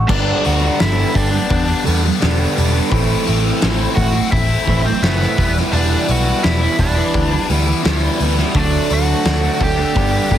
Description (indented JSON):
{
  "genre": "quiet-loud alternative rock",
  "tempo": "85 BPM",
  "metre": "4/4",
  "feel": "straight",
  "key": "G major",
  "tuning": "A4 = 440 Hz",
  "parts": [
    { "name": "picked electric bass", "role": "bass", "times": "0.0-10.4 s", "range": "E1 to E2", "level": "-18 LUFS", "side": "equal", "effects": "none" },
    { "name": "biting lead guitar", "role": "melody", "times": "0.1-10.4 s", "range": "B3 to G5", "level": "-22 LUFS", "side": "equal", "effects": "overdrive, digital delay" },
    { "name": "cranked stack guitar", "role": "riff", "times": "0.1-10.4 s", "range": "G2 to E4", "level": "-22 LUFS", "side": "left 12 dB", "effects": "overdrive, phaser" },
    { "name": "thick fuzz guitar", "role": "riff", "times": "0.1-10.4 s", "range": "G2 to E4", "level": "-20 LUFS", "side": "right 8 dB", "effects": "distortion" },
    { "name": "oversized low-tuned drum kit", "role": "drums", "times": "0.1-10.4 s", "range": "crash cymbal, hi-hat, kick drum, snare drum", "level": "-20 LUFS", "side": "left 1 dB", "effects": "none" }
  ],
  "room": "little or no reverb",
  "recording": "heavily compressed radio sound",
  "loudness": "-14 LUFS",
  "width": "side -10 dB against mid",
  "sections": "0.1-10.4 A section",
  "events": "none",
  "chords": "0.1 G; 2.9 Am; 5.4 Em; 8.5 D",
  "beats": "| 0.09 0.80 1.51 2.21 | 2.92 3.62 4.33 5.03 | 5.73 6.44 7.14 7.84 | 8.55 9.25 9.96"
}